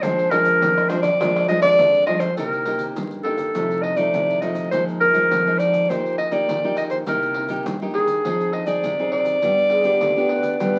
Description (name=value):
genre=samba and choro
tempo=102 BPM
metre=4/4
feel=straight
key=C minor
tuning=A4 = 442 Hz
part: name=clear clarinet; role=melody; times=0.0-10.8 s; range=Ab4 to Eb5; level=-21 LUFS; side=equal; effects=none
part: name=nylon-string guitar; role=accompaniment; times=0.0-10.8 s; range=F2 to Ab4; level=-28 LUFS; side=equal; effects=none
part: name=upright bass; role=bass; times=0.0-10.8 s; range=Bb1 to G2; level=-40 LUFS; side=equal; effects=none
part: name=egg shaker, surdo, pandeiro and tamborim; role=percussion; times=0.0-10.8 s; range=none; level=-34 LUFS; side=equal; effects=none
part: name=mellow hollow baroque flute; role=second line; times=9.7-10.8 s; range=G4 to B4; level=-27 LUFS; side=equal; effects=none
room=wet studio reverb, RT60 0.6 s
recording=very old 78 rpm record, vinyl crackle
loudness=-20 LUFS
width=mono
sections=0.0-2.4 A section; 2.4-10.8 B section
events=none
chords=0.0 Bb7; 2.4 Cm7; 3.5 F7/C; 4.7 Bb7sus4; 5.9 Eb/Bb; 7.1 Cm7; 8.3 Fm7; 9.4 G